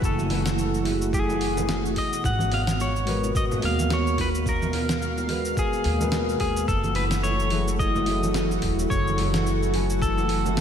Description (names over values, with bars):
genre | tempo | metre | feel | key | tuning
sunset chillout | 108 BPM | 4/4 | swing 57% on 16ths | F# dorian | A4 = 440 Hz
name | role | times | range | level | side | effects
mellow tine electric piano | accompaniment | 0.0-10.4 s | F#3 to G#5 | -30 LUFS | moving between left 3 dB and right 6 dB | auto-pan, tape echo
lush unison pad | sustained chords | 0.0-10.6 s | B2 to E#5 | -29 LUFS | equal | chorus
upright bass | bass | 0.0-10.6 s | E1 to G#2 | -27 LUFS | equal | none
dusty soul sampler-style drum kit | drums | 0.0-10.6 s | cabasa, hi-hat, snare drum | -32 LUFS | right 1 dB | overdrive
electronic kick drum | drums | 0.0-10.1 s | none | -28 LUFS | equal | overdrive
clean electric guitar | melody | 0.1-10.6 s | G#4 to F#5 | -28 LUFS | left 2 dB | vintage 12-bit sampler grit, ping-pong delay
congas and bongos | percussion | 0.2-10.6 s | none | -35 LUFS | right 3 dB | none
room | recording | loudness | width
moderate lush hall reverb, RT60 1.8 s, digital ambience | dreamy mix soaked in reverb | -22 LUFS | side -8 dB against mid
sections
0.0-10.6 A section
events
none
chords
0.0 F#m9; 2.0 G#m9; 6.7 F#m9